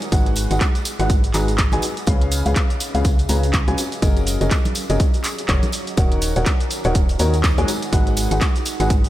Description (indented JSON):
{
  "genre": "piano house",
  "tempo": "123 BPM",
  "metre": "4/4",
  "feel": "swing 58% on 16ths",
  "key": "unclear",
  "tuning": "A4 = 441 Hz",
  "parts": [
    { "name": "punchy analog drum machine", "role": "drums", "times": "0.0-9.1 s", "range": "handclaps, hi-hat, shaker", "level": "-26 LUFS", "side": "right 1 dB", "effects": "none" },
    { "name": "tambourine and congas", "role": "percussion", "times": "0.0-9.1 s", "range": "none", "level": "-32 LUFS", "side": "right 1 dB", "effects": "none" },
    { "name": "deep dark ambient pad", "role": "texture", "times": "0.0-9.1 s", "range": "Db4 to Cb6", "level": "-33 LUFS", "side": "equal", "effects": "none" },
    { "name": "clear upright piano", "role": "riff", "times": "0.1-8.9 s", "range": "Db3 to Bb5", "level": "-23 LUFS", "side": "left 1 dB", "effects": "sidechain pumping, tape echo" },
    { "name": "organ-like FM bass", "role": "bass", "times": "0.1-9.1 s", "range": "Eb1 to Eb2", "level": "-21 LUFS", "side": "equal", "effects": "sidechain pumping" },
    { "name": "electronic kick drum", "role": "drums", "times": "0.1-9.0 s", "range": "none", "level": "-18 LUFS", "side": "equal", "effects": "overdrive" },
    { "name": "breakbeat sampler-style drum kit", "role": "drums", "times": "6.0-9.0 s", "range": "none", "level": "barely audible", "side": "none", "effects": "none" }
  ],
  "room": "light reverb, digital ambience",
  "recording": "none",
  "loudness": "-16 LUFS",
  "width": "side -14 dB against mid",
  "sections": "0.0-9.1 A section",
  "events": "none",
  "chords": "0.0 Abm7; 1.8 Db7; 3.8 Gb69; 6.0 Ebm7; 7.7 Abm7",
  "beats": "| 0.12 0.61 1.10 1.58 | 2.07 2.56 3.05 3.54 | 4.02 4.51 5.00 5.49 | 5.97 6.46 6.95 7.44 | 7.93 8.41 8.90"
}